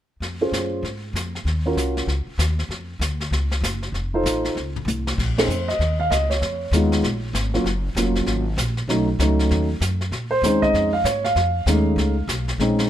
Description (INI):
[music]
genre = jazz piano trio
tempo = 194 BPM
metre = 4/4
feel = swing 62% on 8ths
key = Bb minor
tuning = A4 = 440 Hz
[part]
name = upright bass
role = bass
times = 0.2-12.9 s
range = F1 to Bb2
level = -23 LUFS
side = equal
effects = none
[part]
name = jazz brush drum kit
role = drums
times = 0.2-12.9 s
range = brushed snare drum, hi-hat, kick drum, ride cymbal, snare drum, toms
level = -28 LUFS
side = left 1 dB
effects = none
[part]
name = dark concert grand piano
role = melody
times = 0.4-2.1, 4.1-12.9 s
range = Gb3 to F5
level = -21 LUFS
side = right 1 dB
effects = plate reverb
[sound]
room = light reverb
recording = none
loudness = -19 LUFS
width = side -11 dB against mid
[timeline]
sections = 0.2-5.2 A section; 5.2-12.9 B section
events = drum fill 4.6-5.2; band accent 5.3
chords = 0.2 Fm; 1.5 Ebm7; 2.7 Dmmaj7; 3.9 F7; 5.2 Bbmadd9; 6.4 Fm7b5; 7.0 Bbm7; 7.7 Gbmaj9/F; 8.9 B9; 10.1 Bbm11; 11.4 F7alt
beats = | 0.22 0.53 0.84 1.15 | 1.46 1.77 2.08 2.39 | 2.70 3.01 3.32 3.63 | 3.94 4.25 4.56 4.87 | 5.18 5.49 5.79 6.10 | 6.41 6.72 7.03 7.34 | 7.65 7.96 8.27 8.58 | 8.89 9.20 9.51 9.81 | 10.12 10.43 10.74 11.05 | 11.36 11.67 11.97 12.28 | 12.59